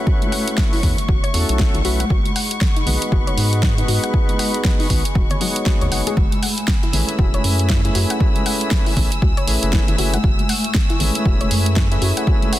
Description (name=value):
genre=deep house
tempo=118 BPM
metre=4/4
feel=swing 60% on 16ths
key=F# dorian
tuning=A4 = 440 Hz
part: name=dark analog pad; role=sustained chords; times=0.0-12.6 s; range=A3 to C#6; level=-30 LUFS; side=right 1 dB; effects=chorus, sidechain pumping
part: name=soft round pluck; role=arpeggios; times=0.0-12.6 s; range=F#3 to F#5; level=-29 LUFS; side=left 4 dB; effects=chorus, cassette tape, sidechain pumping, dub echo
part: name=tonewheel organ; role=stabs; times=0.0-12.6 s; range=G#3 to C#5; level=-25 LUFS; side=equal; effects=chorus vibrato, sidechain pumping, dub echo
part: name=warm studio violin section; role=texture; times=0.0-12.6 s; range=C#6 to E6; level=-30 LUFS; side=left 2 dB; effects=sidechain pumping
part: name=electronic kick drum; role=drums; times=0.1-12.4 s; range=none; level=-18 LUFS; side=equal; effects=overdrive, studio reverb
part: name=deep house drum kit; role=drums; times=0.2-12.6 s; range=hi-hat, snare drum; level=-24 LUFS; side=right 1 dB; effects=overdrive, studio reverb
part: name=congas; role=percussion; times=0.2-12.5 s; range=none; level=-28 LUFS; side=left 2 dB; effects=none
part: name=round analog bass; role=bass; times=0.8-12.1 s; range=D#1 to G#2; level=-20 LUFS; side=equal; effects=sidechain pumping
room=little or no reverb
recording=dense, heavily limited modern master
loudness=-15 LUFS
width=side -14 dB against mid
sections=0.0-12.6 A section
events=none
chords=0.0 B9sus4; 2.1 G#m7; 6.2 F#m11